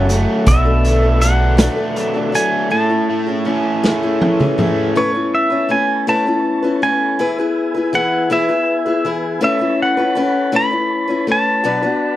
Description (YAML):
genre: folk rock and heartland rock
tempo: 54 BPM (dotted quarters)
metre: 6/8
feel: straight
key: A major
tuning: A4 = 442 Hz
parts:
  - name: picked steel-string acoustic guitar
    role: accompaniment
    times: 0.0-12.2 s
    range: B2 to B4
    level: -19 LUFS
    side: left 3 dB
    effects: none
  - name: tonewheel organ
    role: sustained chords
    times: 0.0-12.2 s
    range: A3 to B4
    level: -26 LUFS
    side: right 1 dB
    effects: slow rotary speaker
  - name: raw garage guitar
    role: riff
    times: 0.0-5.0 s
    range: F#2 to D4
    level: -20 LUFS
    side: right 2 dB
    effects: overdrive, spring reverb
  - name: deep dub picked electric bass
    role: bass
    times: 0.0-1.7 s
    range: F#1 to B1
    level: -14 LUFS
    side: equal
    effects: none
  - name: vintage drum kit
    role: drums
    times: 0.1-4.8 s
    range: hi-hat, kick drum, snare drum, toms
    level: -17 LUFS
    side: equal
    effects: none
  - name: pedal steel guitar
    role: melody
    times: 0.5-12.2 s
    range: C#5 to B5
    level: -18 LUFS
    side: right 1 dB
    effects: none
room: small room reverb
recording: none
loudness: -14 LUFS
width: side -14 dB against mid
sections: 0.0-5.0 A section; 5.0-12.2 B section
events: drum fill 3.8-5.0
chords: 0.5 Bm7; 2.7 Amaj7; 5.0 Aadd9; 7.2 E; 9.4 Aadd9; 11.7 Bm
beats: | 0.47 1.60 | 2.72 3.84 | 4.96 6.08 | 7.20 8.32 | 9.43 10.55 | 11.66